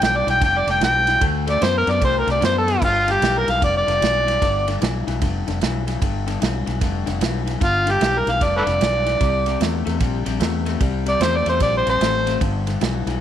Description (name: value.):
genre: electric blues shuffle.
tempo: 150 BPM.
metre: 4/4.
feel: swing 64% on 8ths.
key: G mixolydian.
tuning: A4 = 440 Hz.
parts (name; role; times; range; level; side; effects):
overdriven harmonica; melody; 0.0-4.9, 7.6-12.4 s; F4 to G5; -18 LUFS; equal; none.
electric guitar through a small old amp; riff; 0.0-13.2 s; G2 to B3; -26 LUFS; left 11 dB; none.
fingered electric bass; bass; 0.0-13.2 s; F1 to F#2; -24 LUFS; equal; none.
natural country drum kit; drums; 0.0-13.1 s; crash cymbal, kick drum, ride cymbal, snare drum; -24 LUFS; right 3 dB; none.
room: light reverb, small room ambience.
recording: 1960s-style stereo.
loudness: -17 LUFS.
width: side -10 dB against mid.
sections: 0.0-2.8 A section; 2.8-13.2 B section.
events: harmonica solo 2.8-13.2.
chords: 0.0 G7; 1.2 D7; 2.8 G7; 9.2 C9; 12.4 G.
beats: 0.01 0.41 0.81 | 1.22 1.62 2.02 2.42 | 2.82 3.22 3.62 4.02 | 4.42 4.82 5.21 5.61 | 6.01 6.41 6.81 7.21 | 7.61 8.01 8.41 8.81 | 9.21 9.61 10.01 10.41 | 10.81 11.21 11.61 12.01 | 12.41 12.81.